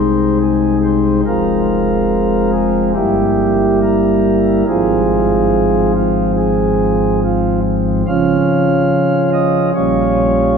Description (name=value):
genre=classical, chorale-style piece for pipe organ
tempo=71 BPM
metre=4/4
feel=rubato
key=unclear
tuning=A4 = 440 Hz
part: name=pipe organ, flutes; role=solo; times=0.0-10.6 s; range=F1 to F5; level=-12 LUFS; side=equal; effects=none
room=wet cathedral reverb, RT60 4.6 s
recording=none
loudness=-12 LUFS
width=side -6 dB against mid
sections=0.0-10.6 A section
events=none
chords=0.0 Ab/C; 1.3 Fm; 3.0 Edim/G; 4.7 Fm/Ab; 8.1 Db; 9.8 Gm7b5/Bb